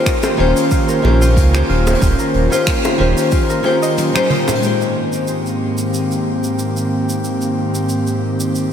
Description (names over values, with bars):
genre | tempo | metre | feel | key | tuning
sunset chillout | 92 BPM | 4/4 | swing 55% on 16ths | Ab major | A4 = 440 Hz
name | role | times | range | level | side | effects
nylon-string guitar | accompaniment | 0.0-8.7 s | Eb3 to C5 | -21 LUFS | moving between left 4 dB and right 4 dB | auto-pan, ping-pong delay, shimmer reverb
airy breathy pad | sustained chords | 0.0-8.7 s | Ab2 to C5 | -18 LUFS | equal | chorus, shimmer reverb
Celtic harp | arpeggios | 0.0-6.3 s | F4 to Eb5 | -25 LUFS | left 1 dB | ping-pong delay, shimmer reverb
electronic kick drum | drums | 0.1-3.5 s | none | -18 LUFS | equal | none
jazz brush drum kit | drums | 0.1-8.7 s | finger snaps, hi-hat, shaker, toms | -25 LUFS | equal | none
bongos | percussion | 0.2-4.6 s | none | -27 LUFS | left 1 dB | none
round analog bass | bass | 0.4-3.1 s | Eb1 to Db2 | -14 LUFS | equal | none
room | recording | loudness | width
moderate lush hall reverb, RT60 2.8 s | dreamy mix soaked in reverb | -14 LUFS | side -8 dB against mid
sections
0.0-4.6 A section; 4.6-8.7 B section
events
kick drops out 4.0-4.6; drum fill 4.0-4.6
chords
0.0 Eb13; 4.6 Abmaj7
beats
0.06 0.72 1.37 | 2.02 2.67 3.33 3.98 | 4.63 5.28 5.93 6.59 | 7.24 7.89 8.54